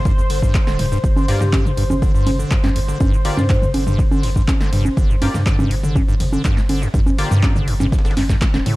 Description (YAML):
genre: acid house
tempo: 122 BPM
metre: 4/4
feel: straight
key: G minor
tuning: A4 = 440 Hz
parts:
  - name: lush unison pad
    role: sustained chords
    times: 0.0-8.8 s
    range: C5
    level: -30 LUFS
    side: equal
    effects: chorus, sidechain pumping
  - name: saturated sub bass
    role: bass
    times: 0.0-8.6 s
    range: D1 to G2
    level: -22 LUFS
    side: equal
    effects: sidechain pumping
  - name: acid bass, square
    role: riff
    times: 0.1-8.8 s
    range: F2 to D3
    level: -22 LUFS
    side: equal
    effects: wide subtle chorus, sidechain pumping
  - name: breakbeat sampler-style drum kit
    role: drums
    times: 0.1-8.8 s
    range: ride cymbal, snare drum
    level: -38 LUFS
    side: right 1 dB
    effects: none
  - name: electronic kick drum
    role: drums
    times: 0.1-8.5 s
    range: none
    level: -17 LUFS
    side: equal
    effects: overdrive
  - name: punchy analog drum machine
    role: drums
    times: 0.1-8.8 s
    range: congas, handclaps, hi-hat, ride cymbal, shaker, snare drum, toms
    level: -22 LUFS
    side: equal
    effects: overdrive
  - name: vibraphone with medium hard mallets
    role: melody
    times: 1.3-3.6 s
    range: G4 to C5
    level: -28 LUFS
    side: left 1 dB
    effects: tape echo
  - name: band-passed chord stab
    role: stabs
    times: 1.3-7.3 s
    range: Bb3 to D5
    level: -28 LUFS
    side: left 2 dB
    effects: chorus, tape echo
room: digital ambience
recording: dark, warm production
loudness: -14 LUFS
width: side -19 dB against mid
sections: 0.0-8.8 A section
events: drum fill 8.2-8.8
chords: 0.0 G7(no3)